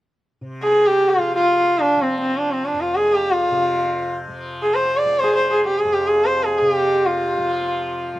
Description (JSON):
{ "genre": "indian classical", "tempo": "free time", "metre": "none", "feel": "none", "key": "F raga shivaranjani", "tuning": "A4 = 441 Hz", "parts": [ { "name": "tanpura", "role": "drone", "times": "0.4-8.2 s", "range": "F2 to F3", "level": "-31 LUFS", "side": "equal", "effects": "none" }, { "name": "clear sarangi", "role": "melody", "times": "0.6-8.2 s", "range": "C4 to D5", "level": "-16 LUFS", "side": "equal", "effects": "none" } ], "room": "light reverb", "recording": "dry, close 1970s-style studio recording", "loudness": "-16 LUFS", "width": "side -15 dB against mid", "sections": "0.4-8.2 A section", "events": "none", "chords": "none" }